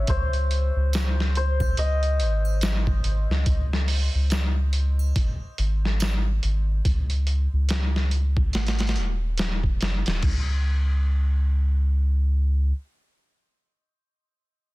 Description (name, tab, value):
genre	trip hop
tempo	71 BPM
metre	4/4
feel	swing 60% on 16ths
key	unclear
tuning	A4 = 440 Hz
part	santur	melody	0.0-4.2 s	B#4 to E5	-32 LUFS	left 3 dB	dub echo
part	soft dub sub bass	bass	0.0-12.7 s	D#1 to C#2	-22 LUFS	equal	none
part	trip hop sampler-style drum kit	drums	0.1-10.4 s	crash cymbal, hi-hat, kick drum, snare drum	-26 LUFS	equal	none
part	tambourine and triangle	percussion	0.9-6.2 s	none	-43 LUFS	right 6 dB	none
room	little or no reverb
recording	dense, heavily limited modern master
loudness	-21 LUFS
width	side -20 dB against mid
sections	0.0-10.2 A section; 10.2-13.6 B section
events	none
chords	0.1 G#sus4; 6.8 N.C.; 8.5 G#5; 10.2 N.C.